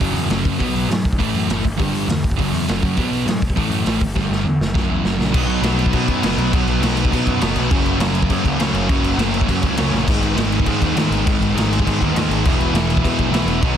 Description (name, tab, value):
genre	punk rock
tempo	203 BPM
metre	4/4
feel	straight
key	B major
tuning	A4 = 440 Hz
part	sludgy distorted guitar	riff	0.0-13.8 s	F#2 to E4	-23 LUFS	left 11 dB	overdrive
part	sludgy distorted guitar	riff	0.0-13.8 s	E2 to B3	-22 LUFS	right 10 dB	overdrive
part	fuzz picked electric bass	bass	0.0-13.7 s	E1 to B2	-23 LUFS	equal	overdrive
part	raw garage drum kit	drums	0.0-13.7 s	crash cymbal, hi-hat, kick drum, snare drum	-20 LUFS	equal	none
part	sludgy distorted guitar	riff	5.3-13.8 s	E2 to B3	-24 LUFS	left 1 dB	overdrive
room	light reverb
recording	dense, heavily limited modern master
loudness	-16 LUFS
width	side -9 dB against mid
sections	0.0-5.3 A section; 5.3-13.8 B section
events	drum fill 4.2-5.3, 9.9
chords	0.0 F#5; 0.6 B5; 1.2 A5; 1.6 G5; 2.2 F#5; 3.0 B5; 3.6 A5; 4.0 G5; 4.6 F#; 5.3 B; 7.7 F#; 10.1 G#m; 12.4 E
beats	0.01 0.30 | 0.60 0.90 1.19 1.49 | 1.79 2.08 2.38 2.68 | 2.97 3.27 3.57 3.86 | 4.16 4.46 4.75 5.05 | 5.34 5.64 5.94 6.23 | 6.53 6.82 7.12 7.41 | 7.71 8.01 8.30 8.60 | 8.89 9.19 9.48 9.78 | 10.08 10.37 10.67 10.96 | 11.26 11.56 11.85 12.15 | 12.44 12.74 13.04 13.33 | 13.63